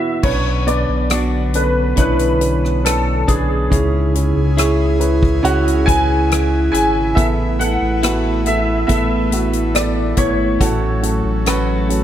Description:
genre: pop ballad.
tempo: 70 BPM.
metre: 4/4.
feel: straight.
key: unclear.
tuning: A4 = 441 Hz.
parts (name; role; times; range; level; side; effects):
warm concert grand piano; melody; 0.0-11.9 s; G#4 to G#5; -21 LUFS; left 1 dB; ensemble chorus, ping-pong delay.
dark upright piano; accompaniment; 0.0-12.0 s; E2 to B4; -20 LUFS; right 4 dB; none.
twelve-string electric guitar; arpeggios; 0.0-12.0 s; A2 to C#5; -27 LUFS; left 3 dB; none.
airy breathy pad; sustained chords; 0.9-12.0 s; C#3 to G#4; -23 LUFS; left 1 dB; chorus.
saturated sub bass; bass; 0.2-12.0 s; G#1 to C#2; -19 LUFS; equal; none.
natural country drum kit; drums; 0.2-12.0 s; crash cymbal, hi-hat, kick drum, rim click; -20 LUFS; left 1 dB; none.
room: moderate plate reverb, RT60 2.0 s.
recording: dreamy mix soaked in reverb.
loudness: -14 LUFS.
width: side -10 dB against mid.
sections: 0.2-12.0 A section.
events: none.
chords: 0.2 Bmadd9; 3.7 C#m; 7.2 Asus2; 10.6 F#m/A.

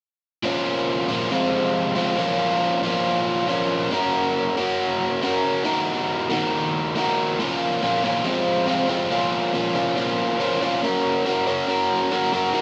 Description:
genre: rock.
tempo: 139 BPM.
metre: 4/4.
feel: straight.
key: Bb minor.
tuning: A4 = 440 Hz.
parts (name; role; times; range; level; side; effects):
overdriven electric guitar; solo; 0.4-12.6 s; F2 to Bb4; -22 LUFS; equal; none.
room: light reverb.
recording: recorded outdoors, with no room sound, nothing above 11.0 kHz.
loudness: -22 LUFS.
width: mono.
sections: 0.4-7.4 A section; 7.4-12.6 B section.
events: none.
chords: 0.4 Bbm; 1.3 Fm; 2.2 Bbm; 3.9 Gb/Bb; 5.7 Ebm; 7.4 Bbm; 8.2 Fm; 9.1 Bbm; 10.8 Gb/Bb.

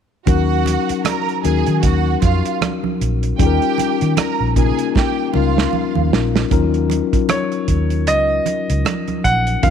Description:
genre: lush 1970s-style soul.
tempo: 77 BPM.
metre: 4/4.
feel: swing 58% on 16ths.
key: Eb minor.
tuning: A4 = 440 Hz.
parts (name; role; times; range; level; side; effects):
warm studio string section; second line; 0.3-6.1 s; F4 to Bb5; -23 LUFS; right 12 dB; none.
mellow tine electric piano; accompaniment; 0.3-9.7 s; Gb3 to Bb4; -20 LUFS; left 13 dB; fast stereo tremolo.
vintage muted fingered electric bass; bass; 0.3-9.7 s; Bb1 to Eb3; -18 LUFS; right 1 dB; none.
warm soul drum kit; drums; 0.3-9.7 s; hi-hat, kick drum, rim click, snare drum; -20 LUFS; right 3 dB; none.
congas; percussion; 0.3-9.7 s; none; -27 LUFS; right 10 dB; none.
bright grand piano; melody; 7.3-9.7 s; Db5 to Gb5; -19 LUFS; right 1 dB; none.
room: light reverb, studio reverb.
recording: 1960s-style stereo with parts hard left and right.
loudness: -15 LUFS.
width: side -8 dB against mid.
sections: 0.3-6.5 A section; 6.5-9.7 B section.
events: drum fill 5.0-6.5.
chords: 0.3 Ebm7; 3.4 Eb7; 6.5 Ebm7.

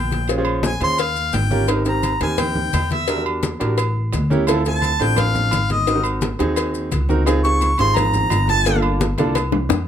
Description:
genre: Afro-Cuban jazz.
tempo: 172 BPM.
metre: 4/4.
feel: straight.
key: unclear.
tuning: A4 = 440 Hz.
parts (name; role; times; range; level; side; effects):
warm harmonica; melody; 0.0-8.8 s; Eb5 to Db6; -21 LUFS; left 1 dB; none.
upright bass; bass; 0.0-9.9 s; G1 to F2; -21 LUFS; equal; none.
congas; percussion; 0.1-9.8 s; none; -26 LUFS; left 1 dB; none.
cowbell and bongos; percussion; 0.1-9.9 s; none; -27 LUFS; left 9 dB; none.
maracas; percussion; 0.1-9.9 s; none; -35 LUFS; left 7 dB; none.
warm baby grand piano; accompaniment; 0.3-9.4 s; Bb3 to C5; -22 LUFS; right 2 dB; none.
agogo bells and timbales; percussion; 0.3-9.9 s; none; -29 LUFS; right 4 dB; none.
room: light reverb.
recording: close, detailed microphones.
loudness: -16 LUFS.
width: side -9 dB against mid.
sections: 0.0-9.9 A section.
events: harmonica solo 0.0-9.9; drum fill 9.0-9.9.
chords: 0.3 Bbm9; 1.0 Eb9; 1.7 Abmaj9; 3.1 Em7b5; 3.8 A7b9; 4.5 Dm9; 5.9 Ab7; 7.3 Dbmaj7; 8.7 Gm9; 9.4 N.C..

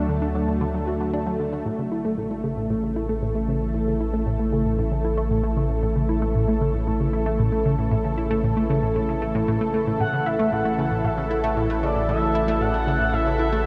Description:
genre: ambient, sequencer-driven space music.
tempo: 115 BPM.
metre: 4/4.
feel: straight.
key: unclear.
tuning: A4 = 441 Hz.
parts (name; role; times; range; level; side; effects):
lush unison pad; sustained chords; 0.0-13.7 s; C#3 to A5; -27 LUFS; equal; chorus.
tight sequenced synth; riff; 0.0-13.6 s; A2 to F#4; -28 LUFS; equal; chorus, phaser, delay.
warm sub bass; bass; 0.0-13.7 s; A1 to D2; -30 LUFS; equal; none.
wind-like tuned noise texture; texture; 4.4-13.7 s; C#4 to C#5; -45 LUFS; equal; none.
expressive portamento lead; melody; 10.0-13.7 s; D5 to F#5; -28 LUFS; equal; lush chorus, delay.
room: wet huge ambient reverb, RT60 7.2 s.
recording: dark, warm production, nothing above 11.0 kHz.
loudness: -23 LUFS.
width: mono.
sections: 0.0-1.7 A section; 1.7-13.7 B section.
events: none.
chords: 0.0 D; 1.7 A.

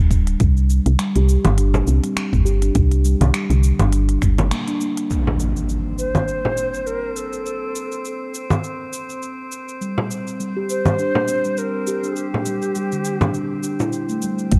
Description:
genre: organic downtempo.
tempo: 102 BPM.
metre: 4/4.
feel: swing 56% on 16ths.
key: unclear.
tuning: A4 = 439 Hz.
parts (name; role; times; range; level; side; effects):
steel tongue drum; arpeggios; 0.0-5.0, 9.8-14.6 s; D3 to G4; -27 LUFS; equal; digital delay.
woody FM bass; bass; 0.0-4.5, 14.5-14.6 s; D1 to C2; -18 LUFS; equal; none.
electronic kick drum; drums; 0.1-4.4, 14.5-14.6 s; none; -19 LUFS; equal; none.
organic electronic drum kit; drums; 0.1-14.6 s; cabasa, congas, finger snaps, hi-hat; -26 LUFS; equal; none.
frame drum; percussion; 1.7-13.9 s; none; -28 LUFS; equal; none.
impact; sound effects; 5.1-7.5 s; none; -27 LUFS; equal; none.
drifting glass-harmonics texture; texture; 5.8-14.5 s; C4 to C5; -35 LUFS; equal; chorus, built-in reverb.
mellow Native American-style cedar flute; melody; 6.0-13.9 s; G4 to C5; -27 LUFS; equal; delay.
room: light reverb.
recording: dark, warm production.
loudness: -20 LUFS.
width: mono.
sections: 0.0-5.1 A section; 5.1-14.5 B section.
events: break 4.5-5.1; band accent 4.5; impact 5.1-7.5.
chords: 0.4 C5; 5.1 N.C.; 9.8 Gm; 12.2 C5.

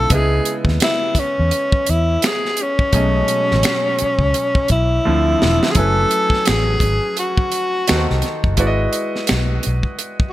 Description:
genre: R&B, neo-soul.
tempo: 85 BPM.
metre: 4/4.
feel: swing 59% on 16ths.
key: unclear.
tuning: A4 = 440 Hz.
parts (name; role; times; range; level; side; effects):
breathy tenor saxophone; melody; 0.0-10.3 s; C#4 to A4; -18 LUFS; left 1 dB; none.
clear concert grand piano; accompaniment; 0.0-10.3 s; B2 to G#5; -23 LUFS; right 1 dB; none.
vintage muted fingered electric bass; bass; 0.0-9.8 s; E1 to E2; -18 LUFS; equal; none.
tight funk drum kit; drums; 0.1-10.3 s; finger snaps, hi-hat, kick drum, snare drum; -19 LUFS; equal; gated reverb.
room: light reverb, small room ambience.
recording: bright 1980s-style digital production.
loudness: -15 LUFS.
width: side -15 dB against mid.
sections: 0.0-5.8 A section; 5.8-10.3 B section.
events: drum fill 5.0-5.8.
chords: 0.1 C#m9; 2.9 B13; 5.0 Dm9; 5.8 F#m11; 7.9 D#dim7; 8.6 Emaj9/G#.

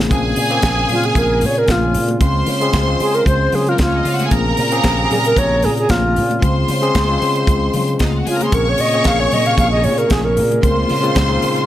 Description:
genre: disco.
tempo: 114 BPM.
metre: 4/4.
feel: straight.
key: Bb minor.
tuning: A4 = 440 Hz.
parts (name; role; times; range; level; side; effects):
overdriven tine electric piano; accompaniment; 0.0-11.7 s; C3 to C5; -21 LUFS; left 3 dB; none.
dark studio string section; sustained chords; 0.0-0.1, 8.5-11.7 s; Bb2 to Ab4; -26 LUFS; equal; stereo widening.
slap bass with an envelope filter; bass; 0.0-11.6 s; Bb1 to Db3; -20 LUFS; equal; none.
tight funk drum kit; drums; 0.0-11.7 s; hi-hat, kick drum, snare drum; -20 LUFS; equal; none.
bright symphonic violin section; second line; 0.1-11.7 s; Bb3 to Db6; -20 LUFS; equal; none.
congas; percussion; 0.4-11.3 s; none; -28 LUFS; left 6 dB; none.
bright reedy wooden-headed alto flute; melody; 0.9-10.8 s; F4 to F5; -18 LUFS; right 1 dB; analog delay.
room: light reverb, studio ambience.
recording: none.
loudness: -13 LUFS.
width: side -13 dB against mid.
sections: 0.1-11.7 A section.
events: alto flute solo 0.1-11.7.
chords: 0.1 Bbm9; 2.2 Dbmaj7; 4.3 Bbm9; 6.4 Dbmaj7; 8.5 Bbm9; 10.6 Dbmaj7.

